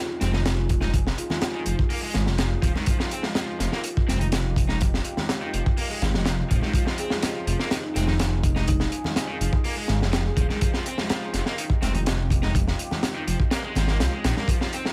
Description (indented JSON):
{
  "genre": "breakbeat, breaks",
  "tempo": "124 BPM",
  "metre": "4/4",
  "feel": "straight",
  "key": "F minor",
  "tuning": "A4 = 441 Hz",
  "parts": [
    { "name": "marimba with soft mallets", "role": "melody", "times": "0.0-1.4, 7.0-10.6 s", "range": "Eb4 to Ab4", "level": "-37 LUFS", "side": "equal", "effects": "AM radio sound, dub echo" },
    { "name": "deep dark ambient pad", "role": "sustained chords", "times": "0.1-14.9 s", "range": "Eb4 to Ab4", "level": "-39 LUFS", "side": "equal", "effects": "chorus, built-in reverb, sidechain pumping" },
    { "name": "raw garage guitar", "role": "riff", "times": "0.2-14.9 s", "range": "Eb3 to Eb4", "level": "-35 LUFS", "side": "equal", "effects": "overdrive, dub echo" },
    { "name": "dark detuned saw bass", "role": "bass", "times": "0.2-14.3 s", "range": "Eb1 to C2", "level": "-27 LUFS", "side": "equal", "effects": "none" },
    { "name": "crunchy breakbeat drum kit", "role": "drums", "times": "0.2-14.9 s", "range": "hi-hat, kick drum, snare drum", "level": "-27 LUFS", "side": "equal", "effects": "none" },
    { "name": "congas", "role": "percussion", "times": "0.2-14.5 s", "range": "none", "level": "-37 LUFS", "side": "equal", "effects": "none" }
  ],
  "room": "small room reverb",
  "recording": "vinyl crackle",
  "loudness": "-24 LUFS",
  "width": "mono",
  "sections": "0.0-14.5 A section",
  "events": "drop 0.0-14.5; kick drops out 13.5-14.5",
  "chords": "0.0 Fm9"
}